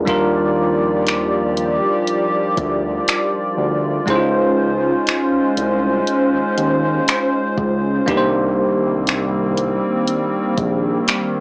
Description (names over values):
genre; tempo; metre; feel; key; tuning
contemporary R&B; 60 BPM; 4/4; straight; unclear; A4 = 441 Hz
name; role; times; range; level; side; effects
bell-like tine electric piano; accompaniment; 0.0-11.4 s; G3 to C5; -20 LUFS; equal; fast stereo tremolo
hollow soft pad; sustained chords; 0.0-11.4 s; Eb3 to D5; -19 LUFS; equal; chorus, sidechain pumping
smooth synth bass; bass; 0.0-11.0 s; Bb1 to Eb2; -22 LUFS; equal; none
smooth R&B drum kit; drums; 0.1-11.3 s; finger snaps, hi-hat, kick drum; -20 LUFS; equal; soft clipping on snare
room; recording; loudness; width
moderate studio reverb, RT60 0.5 s; blown-out, overdriven recording, overdrive, small speaker sound; -15 LUFS; side -32 dB against mid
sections
0.0-11.4 A section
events
none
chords
0.1 Ebmaj9; 4.1 Dbmaj7; 8.1 Cm7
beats
| 0.07 1.07 2.07 3.07 | 4.07 5.07 6.07 7.07 | 8.07 9.07 10.07 11.07